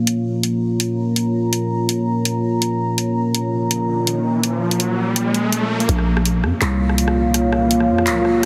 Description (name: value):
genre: half-time drum and bass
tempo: 165 BPM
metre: 4/4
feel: half-time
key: Bb minor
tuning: A4 = 440 Hz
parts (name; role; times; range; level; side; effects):
- dark analog pad; sustained chords; 0.0-8.5 s; Bb3 to Bb5; -21 LUFS; equal; chorus
- drum and bass drum kit; drums; 0.1-8.5 s; handclaps, hi-hat, rim click; -24 LUFS; equal; none
- riser; sound effects; 3.6-8.5 s; none; -27 LUFS; equal; none
- growling 808-style bass; bass; 5.9-8.5 s; Bb1 to F2; -21 LUFS; equal; none
room: light reverb, digital ambience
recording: heavily compressed radio sound, multiband compression, high-pass filter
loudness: -19 LUFS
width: mono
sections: 0.0-5.9 A section; 5.9-8.5 B section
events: filter sweep on analog synth pad 0.0-5.9; riser 3.6-5.9, 5.9-8.5; build-up 5.9-8.5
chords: 0.0 Bbm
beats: | 0.07 0.43 0.80 1.16 | 1.53 1.89 2.25 2.62 | 2.98 3.34 3.71 4.07 | 4.43 4.80 5.16 5.53 | 5.89 6.25 6.62 6.98 | 7.34 7.71 8.07 8.44